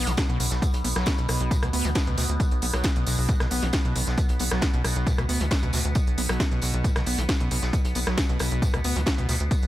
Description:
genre	driving peak-time techno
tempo	135 BPM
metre	4/4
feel	straight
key	B minor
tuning	A4 = 439 Hz
part	screaming distorted acid line	riff	0.0-9.5 s	A2 to B3	-30 LUFS	equal	distortion, wide subtle chorus, sidechain pumping, dub echo
part	tight sequencer bass	bass	0.0-9.7 s	B1 to D2	-27 LUFS	equal	sidechain pumping
part	overtone-sweeping drone	drone	0.0-9.7 s	B2 to B3	-34 LUFS	equal	chorus, built-in reverb, sidechain pumping
part	loose indie drum kit	drums	0.1-9.6 s	hi-hat, snare drum, tambourine	-36 LUFS	equal	sidechain pumping on hats, high-pass filter on hats, high-pass filter on snare, sidechain pumping on perc, high-pass filter on perc, high-pass filter on room
part	techno drum kit	drums	0.1-9.7 s	hi-hat, rim click, snare drum	-29 LUFS	equal	none
part	electronic kick drum	drums	0.2-9.6 s	none	-24 LUFS	equal	overdrive
room	studio reverb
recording	none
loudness	-22 LUFS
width	side -15 dB against mid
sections	0.0-9.7 A section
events	none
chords	0.0 Bm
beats	0.18 | 0.62 1.07 1.51 1.96 | 2.40 2.84 3.29 3.73 | 4.18 4.62 5.07 5.51 | 5.96 6.40 6.84 7.29 | 7.73 8.18 8.62 9.07 | 9.51

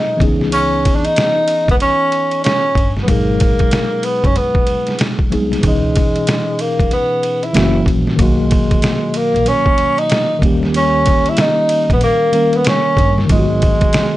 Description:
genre	hip hop, jazz-hop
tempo	94 BPM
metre	4/4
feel	swing 64% on 16ths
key	C# dorian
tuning	A4 = 440 Hz
part	mellow tenor saxophone	melody	0.0-14.2 s	G#3 to E4	-16 LUFS	equal	none
part	mellow tine electric piano	accompaniment	0.0-14.2 s	B2 to A#4	-19 LUFS	left 1 dB	medium stereo tremolo
part	upright bass	bass	0.2-13.7 s	F#1 to D#2	-20 LUFS	equal	tube saturation
part	trip hop sampler-style drum kit	drums	0.2-14.1 s	hi-hat, kick drum, ride cymbal, snare drum	-17 LUFS	equal	vintage 12-bit sampler grit
room	little or no reverb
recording	dry, gritty hardware recording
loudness	-12 LUFS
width	side -16 dB against mid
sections	0.0-14.2 A section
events	none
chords	0.2 C#m9; 3.1 G#m7; 5.6 C#m9; 7.5 F#7; 8.2 Bmaj7; 10.4 D#7; 13.3 G#m7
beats	| 0.53 1.17 1.80 2.44 | 3.08 3.72 4.36 5.00 | 5.63 6.27 6.91 7.55 | 8.19 8.82 9.46 10.10 | 10.74 11.38 12.02 12.65 | 13.29 13.93

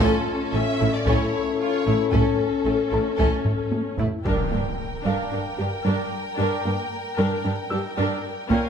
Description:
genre	cinematic, hybrid orchestral and electronic film score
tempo	113 BPM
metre	4/4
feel	straight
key	G dorian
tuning	A4 = 440 Hz
part	warm symphonic violin section	melody	0.0-3.7 s	A4 to E5	-31 LUFS	left 3 dB	none
part	clear symphonic violin section	second line	0.0-8.7 s	A3 to G5	-30 LUFS	left 2 dB	none
part	rich symphonic viola section	accompaniment	0.0-8.7 s	C#4 to Bb4	-29 LUFS	equal	none
part	mellow French horn section	sustained chords	0.0-4.0 s	C#4 to A4	-25 LUFS	left 7 dB	none
part	wide unison pluck	arpeggios	0.0-8.7 s	G3 to A4	-31 LUFS	right 3 dB	ping-pong delay
part	bright symphonic cello section	bass	0.0-8.6 s	G2 to Bb2	-27 LUFS	right 2 dB	none
part	rich symphonic double bass section	bass	0.0-4.1 s	A1	-28 LUFS	right 3 dB	none
part	taiko ensemble	drums	0.0-5.3, 8.5-8.7 s	none	-26 LUFS	equal	none
part	clear grand piano	texture	0.0-8.7 s	F4 to E6	-36 LUFS	left 3 dB	ping-pong delay
part	impact	sound effects	4.3-6.4 s	none	-30 LUFS	equal	none
room	moderate recital hall reverb, RT60 1.3 s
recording	none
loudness	-21 LUFS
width	side -7 dB against mid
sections	0.0-4.3 A section; 4.3-8.7 B section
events	drum fill 3.5-4.3; impact 4.3-6.4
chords	0.0 A; 4.3 Gm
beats	| 0.01 0.54 1.07 1.60 | 2.14 2.67 3.20 3.73 | 4.26 4.79 5.32 5.85 | 6.38 6.92 7.45 7.98 | 8.51

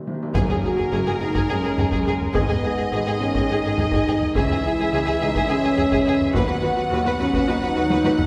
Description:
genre	cinematic, epic orchestral film score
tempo	210 BPM (eighths)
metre	7/8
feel	straight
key	unclear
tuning	A4 = 439 Hz
part	timpani	percussion	0.0-0.3, 6.4-7.2 s	D#3	-34 LUFS	equal	none
part	rich symphonic violin section	second line	0.3-8.1 s	G#4 to B4	-31 LUFS	equal	none
part	warm symphonic viola section	accompaniment	0.3-8.1 s	F#4 to G#4	-32 LUFS	equal	none
part	dark French horn section	sustained chords	0.3-8.3 s	B3 to F#4	-25 LUFS	equal	none
part	warm trombone section	sustained chords	0.3-8.3 s	C#3 to B3	-34 LUFS	equal	none
part	clear symphonic double bass section	bass	0.3-8.1 s	F#1 to D#2	-33 LUFS	equal	none
part	solo taiko drums	drums	0.3-8.3 s	none	-28 LUFS	equal	none
part	clear symphonic violin section	melody	0.4-8.3 s	A#4 to F#5	-31 LUFS	equal	none
part	rich symphonic cello section	bass	0.4-8.1 s	C#2 to G#2	-32 LUFS	equal	none
part	impact	sound effects	0.4-2.3 s	none	-38 LUFS	equal	none
room	wet scoring stage reverb, RT60 1.8 s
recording	heard from further back in the room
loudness	-21 LUFS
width	mono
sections	0.3-8.3 A section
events	break 0.0-0.3; timpani fill 0.0-0.3; impact 0.3-2.3; drum fill 7.9-8.3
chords	0.3 F#add9; 2.3 G#m; 4.4 C#m; 6.3 B/D#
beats	0.06 | 0.35 0.63 0.92 1.21 1.49 1.78 2.06 | 2.35 2.63 2.92 3.21 3.49 3.78 4.07 | 4.35 4.64 4.92 5.21 5.49 5.78 6.06 | 6.34 6.63 6.91 7.20 7.48 7.76 8.05

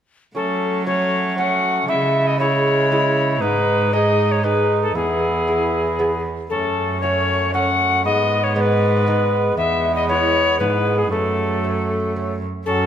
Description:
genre	classical, renaissance-style consort dance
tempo	117 BPM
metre	3/4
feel	straight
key	F# dorian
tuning	A4 = 440 Hz
part	brilliant trombone	accompaniment	0.3-12.9 s	F#3 to B3	-28 LUFS	left 2 dB	none
part	lute	accompaniment	0.3-12.9 s	E2 to G#4	-25 LUFS	right 2 dB	none
part	alto recorder	melody	0.4-12.9 s	G#4 to F#5	-20 LUFS	left 4 dB	none
part	mellow cor anglais	second line	0.4-12.9 s	A3 to E4	-24 LUFS	right 4 dB	none
part	rich cello	bass	0.4-12.9 s	E2 to F#3	-23 LUFS	right 2 dB	none
room	wet recital hall reverb, RT60 1.8 s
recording	none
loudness	-16 LUFS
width	side -9 dB against mid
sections	0.3-12.7 A section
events	none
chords	0.3 F#m; 1.9 C#m; 3.4 G#m; 5.0 E; 6.5 F#m; 8.0 G#m; 9.6 E; 11.1 F#m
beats	| 0.35 0.86 1.38 | 1.89 2.40 2.91 | 3.42 3.93 4.44 | 4.96 5.47 5.99 | 6.51 7.02 7.53 | 8.04 8.55 9.06 | 9.57 10.08 10.59 | 11.11 11.63 12.15 | 12.67

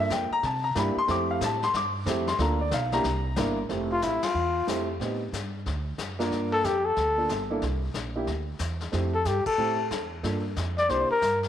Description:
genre	jazz, small-group swing and bop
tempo	184 BPM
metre	4/4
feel	swing 64% on 8ths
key	F major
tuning	A4 = 441 Hz
part	warm baby grand piano	accompaniment	0.0-11.1 s	A3 to D6	-28 LUFS	equal	none
part	upright bass	bass	0.0-11.5 s	F1 to C3	-31 LUFS	right 1 dB	none
part	vintage brush drum kit	drums	0.1-11.5 s	brushed snare drum, hi-hat, kick drum, ride cymbal, snare drum	-35 LUFS	left 6 dB	none
part	breathy trumpet	melody	3.9-11.4 s	E4 to D5	-25 LUFS	left 2 dB	slapback echo
room	moderate plate reverb, RT60 1.4 s, small room ambience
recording	1960s-style stereo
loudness	-25 LUFS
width	side -10 dB against mid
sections	0.0-3.7 A section; 3.7-11.5 B section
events	band accent 4.2, 9.4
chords	0.4 C7; 1.1 Fmaj9; 2.4 Gm7; 3.0 C7; 3.7 Fmaj9; 5.0 Am7b5; 5.7 D; 6.3 Gm9; 7.6 C7; 8.9 Fmaj7; 10.2 Gm7; 10.9 C7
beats	0.10 0.43 0.76 | 1.08 1.41 1.74 2.06 | 2.39 2.72 3.04 3.37 | 3.70 4.02 4.35 4.68 | 5.00 5.33 5.66 5.98 | 6.31 6.64 6.96 7.29 | 7.62 7.95 8.27 8.60 | 8.93 9.25 9.58 9.91 | 10.23 10.56 10.89 11.21

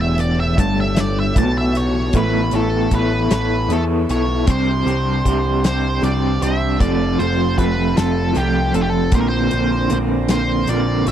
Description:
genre	psychedelic rock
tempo	52 BPM (dotted quarters)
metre	6/8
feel	straight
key	unclear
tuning	A4 = 441 Hz
part	octave-fuzz lead guitar	melody	0.0-11.1 s	G4 to A5	-23 LUFS	equal	distortion, tape echo
part	combo organ	sustained chords	0.0-11.1 s	B3 to Bb5	-32 LUFS	right 6 dB	wide subtle chorus
part	electric guitar through a small old amp	riff	0.0-11.1 s	E2 to C#5	-19 LUFS	equal	tremolo
part	growling picked electric bass	bass	0.0-11.1 s	E1 to E2	-21 LUFS	equal	overdrive
part	pedal harmonium	drone	0.0-2.2 s	A2	-30 LUFS	left 1 dB	none
part	damped 70s drum kit	drums	0.2-11.1 s	hi-hat, kick drum, snare drum	-18 LUFS	equal	none
part	congas	percussion	0.2-10.9 s	none	-32 LUFS	right 10 dB	none
room	little or no reverb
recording	dry, close 1970s-style studio recording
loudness	-15 LUFS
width	side -10 dB against mid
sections	0.0-2.1 A section; 2.1-11.1 B section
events	lead electric guitar solo 0.0-2.1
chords	0.0 Gadd9; 2.1 Aadd9; 4.5 Csus2; 6.8 F; 9.1 Bbadd9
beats	0.98 | 2.14 3.31 | 4.47 5.64 | 6.80 7.97 | 9.13 10.30

